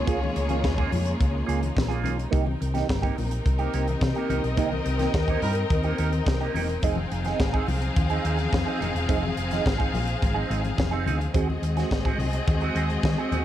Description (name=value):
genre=disco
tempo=106 BPM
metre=4/4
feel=straight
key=F minor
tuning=A4 = 441 Hz
part: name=clear studio string section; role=second line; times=0.0-13.4 s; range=Bb3 to F5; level=-31 LUFS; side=left 3 dB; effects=tape echo
part: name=clear studio string section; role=sustained chords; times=0.0-13.4 s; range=C3 to G5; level=-33 LUFS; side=left 1 dB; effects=none
part: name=hollow-body short-scale fingered electric bass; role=bass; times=0.0-13.4 s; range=E1 to Eb3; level=-27 LUFS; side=equal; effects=none
part: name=semi-hollow electric guitar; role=accompaniment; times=0.1-13.4 s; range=Bb3 to Ab4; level=-31 LUFS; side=right 8 dB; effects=wah
part: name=tight funk drum kit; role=drums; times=0.1-13.4 s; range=hi-hat, kick drum, snare drum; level=-27 LUFS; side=equal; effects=none
part: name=congas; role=percussion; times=0.1-13.4 s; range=none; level=-36 LUFS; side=left 6 dB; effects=none
part: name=warm horn section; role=stabs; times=5.4-5.6 s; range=G3 to Bb4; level=-33 LUFS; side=right 5 dB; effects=none
room=studio reverb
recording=dark, warm production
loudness=-22 LUFS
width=side -12 dB against mid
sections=0.0-13.4 A section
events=band accent 4.6-6.8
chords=0.0 Db6; 2.3 Cm7; 6.8 Fm7; 11.3 Ab7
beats=| 0.07 0.64 1.20 1.76 | 2.33 2.89 3.45 4.02 | 4.58 5.14 5.71 6.27 | 6.83 7.40 7.96 8.53 | 9.09 9.65 10.22 10.78 | 11.34 11.90 12.47 13.03